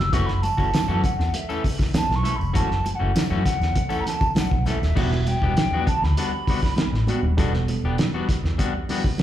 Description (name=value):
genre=funk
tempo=99 BPM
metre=4/4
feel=straight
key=E dorian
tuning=A4 = 440 Hz
part: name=mellow hollow silver concert flute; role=melody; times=0.0-7.1 s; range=E5 to E6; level=-27 LUFS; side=right 1 dB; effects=slapback echo
part: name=vintage muted fingered electric bass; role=bass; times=0.0-9.2 s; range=D#1 to F#2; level=-23 LUFS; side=equal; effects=none
part: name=cloth-damped thuddy drum kit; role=drums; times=0.0-9.2 s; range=crash cymbal, hi-hat, kick drum, snare drum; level=-24 LUFS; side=equal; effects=none
part: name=clean electric guitar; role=accompaniment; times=0.1-9.1 s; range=E3 to A4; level=-29 LUFS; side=left 5 dB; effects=slapback echo
part: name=congas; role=percussion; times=0.1-9.2 s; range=none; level=-34 LUFS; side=right 4 dB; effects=none
part: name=tambourine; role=percussion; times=0.1-5.0 s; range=none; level=-46 LUFS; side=left 7 dB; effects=none
part: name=reed electric piano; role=stabs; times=5.0-8.0 s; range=G3 to A4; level=-32 LUFS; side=right 4 dB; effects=fast tremolo, slapback echo
room=light reverb, small room ambience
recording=live gig heard through the venue's PA, club reverb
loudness=-20 LUFS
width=side -12 dB against mid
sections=0.0-5.0 A section; 5.0-9.2 B section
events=flute solo 0.0-5.0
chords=0.1 F#m7; 5.0 Em9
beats=| 0.13 0.73 1.34 1.94 | 2.55 3.15 3.75 4.36 | 4.96 5.57 6.17 6.78 | 7.38 7.98 8.59 9.19